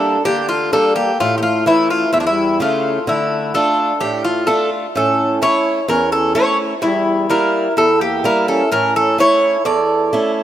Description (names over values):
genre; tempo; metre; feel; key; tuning
greek folk, Greek bouzouki band; 128 BPM; 4/4; straight; unclear; A4 = 440 Hz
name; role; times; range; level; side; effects
Greek bouzouki; melody; 0.0-10.3 s; D4 to D5; -16 LUFS; equal; none
mellow accordion; second line; 0.0-10.3 s; F3 to A4; -21 LUFS; equal; none
picked swing-style acoustic guitar; accompaniment; 0.0-10.4 s; E2 to F4; -20 LUFS; right 1 dB; none
room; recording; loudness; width
moderate lush hall reverb, RT60 2.8 s; rough home demo mix; -13 LUFS; side -11 dB against mid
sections
0.0-10.4 A section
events
none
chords
0.0 Gm; 1.2 A; 3.1 Dm; 4.9 A; 6.8 Edim; 8.7 A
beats
0.26 0.73 | 1.20 1.67 2.13 2.60 | 3.07 3.54 4.01 4.48 | 4.95 5.42 5.89 6.36 | 6.82 7.29 7.76 8.23 | 8.70 9.17 9.64 10.11